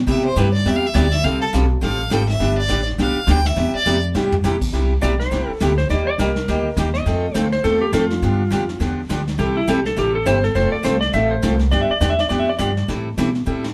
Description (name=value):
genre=country, western swing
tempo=206 BPM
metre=4/4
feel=swing 59% on 8ths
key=C major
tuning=A4 = 444 Hz
part: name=upright bass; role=bass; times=0.0-13.7 s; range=F1 to C3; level=-23 LUFS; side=equal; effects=none
part: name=clear fiddle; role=melody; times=0.1-4.0 s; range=A4 to G5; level=-25 LUFS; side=equal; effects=none
part: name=picked steel-string acoustic guitar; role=accompaniment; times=0.1-13.7 s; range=C3 to A4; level=-24 LUFS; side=equal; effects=none
part: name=vintage brush drum kit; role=drums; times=0.1-13.7 s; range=brushed snare drum, crash cymbal, hi-hat, kick drum, snare drum, toms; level=-30 LUFS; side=equal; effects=none
part: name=clean lap steel guitar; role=second line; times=5.0-12.9 s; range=E4 to E5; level=-24 LUFS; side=equal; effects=none
room=wet small room reverb, RT60 0.6 s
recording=band playing live in one room, lossy compression artefacts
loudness=-19 LUFS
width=mono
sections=0.0-4.7 A section; 4.7-13.7 A section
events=fiddle solo 0.0-4.7; drum fill 3.9-4.4, 13.5; electric slide guitar solo 4.7-13.7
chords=0.1 Cmaj7; 1.2 Fadd9; 2.4 G; 3.6 Cmaj7; 5.9 Eb; 7.1 F; 8.2 G7; 9.4 C6; 10.6 F; 11.7 G7; 12.9 Am7